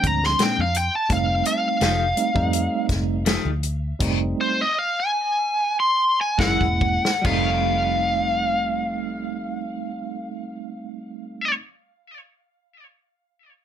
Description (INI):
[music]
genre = straight-eighth soul blues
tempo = 68-85 BPM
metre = 4/4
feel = straight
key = F mixolydian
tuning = A4 = 440 Hz
[part]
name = biting lead guitar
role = melody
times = 0.0-11.5 s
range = C5 to C6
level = -22 LUFS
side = equal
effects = overdrive
[part]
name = barky tine electric piano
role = accompaniment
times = 0.0-11.6 s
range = F3 to Fb4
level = -27 LUFS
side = right 6 dB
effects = medium stereo tremolo
[part]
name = vintage muted fingered electric bass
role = bass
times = 0.0-11.6 s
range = Fb1 to F2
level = -26 LUFS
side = equal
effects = none
[part]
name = warm soul drum kit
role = drums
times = 0.0-7.5 s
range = crash cymbal, hi-hat, kick drum, snare drum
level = -25 LUFS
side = left 1 dB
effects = none
[part]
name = clean electric guitar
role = stabs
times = 0.4-11.7 s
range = Bb2 to Ab4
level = -29 LUFS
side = left 5 dB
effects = none
[sound]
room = moderate club reverb, RT60 0.6 s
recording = none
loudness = -20 LUFS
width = side -9 dB against mid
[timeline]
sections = 0.0-7.2 A section; 7.2-10.8 B section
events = slowing down 1.1-7.2; drum fill 6.4-7.2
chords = 0.0 Bb9; 1.1 F9; 6.4 Gb9; 7.2 F9